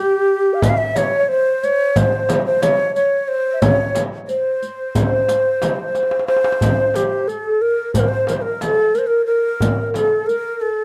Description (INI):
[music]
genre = Turkish makam ensemble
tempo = 180 BPM (eighths)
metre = 9/8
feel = straight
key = C makam hicaz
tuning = A4 = 440 Hz
[part]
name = breathy ney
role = melody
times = 0.0-10.8 s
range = G4 to F5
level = -21 LUFS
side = equal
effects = tape echo
[part]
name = bright reedy bass ocarina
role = second line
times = 0.0-10.7 s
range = G4 to F5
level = -23 LUFS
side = equal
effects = none
[part]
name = darbuka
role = percussion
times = 0.6-10.7 s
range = none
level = -25 LUFS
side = equal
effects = none
[part]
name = frame drum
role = percussion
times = 0.6-10.1 s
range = none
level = -25 LUFS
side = equal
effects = none
[part]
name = riq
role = percussion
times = 0.6-10.4 s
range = none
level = -29 LUFS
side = equal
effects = none
[sound]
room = light reverb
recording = dry, close 1970s-style studio recording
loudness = -18 LUFS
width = mono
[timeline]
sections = 0.0-6.6 A section; 6.6-10.8 B section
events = drum fill 6.0-6.6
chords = none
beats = 0.30 | 0.63 0.96 1.29 1.63 1.96 2.29 2.62 2.96 3.29 | 3.62 3.95 4.29 4.62 4.95 5.28 5.62 5.95 6.28 | 6.62 6.95 7.28 7.62 7.95 8.28 8.62 8.95 9.29 | 9.62 9.95 10.29 10.62